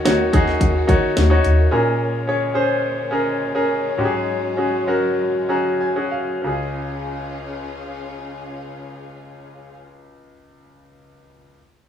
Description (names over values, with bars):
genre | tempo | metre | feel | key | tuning
piano-driven pop | 92-108 BPM | 4/4 | straight | Db major | A4 = 441 Hz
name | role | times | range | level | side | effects
bright concert grand piano | accompaniment | 0.0-11.6 s | Db2 to Bb5 | -20 LUFS | equal | none
warm studio string section | sustained chords | 0.0-9.8 s | Db3 to Ab4 | -30 LUFS | left 5 dB | none
plucky analog bass | bass | 0.1-1.7 s | Eb2 to Eb3 | -18 LUFS | equal | none
house drum kit | drums | 0.1-1.6 s | hi-hat, kick drum, snare drum | -19 LUFS | equal | none
room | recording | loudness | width
light reverb | rough home demo mix, small room ambience | -17 LUFS | side -9 dB against mid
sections
0.0-6.5 A section; 6.5-9.1 B section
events
slowing down 1.7-6.5; grand piano fill 5.2-6.5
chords
0.0 Ebm7; 1.7 Bbm7; 4.0 Ab7sus4; 6.5 Db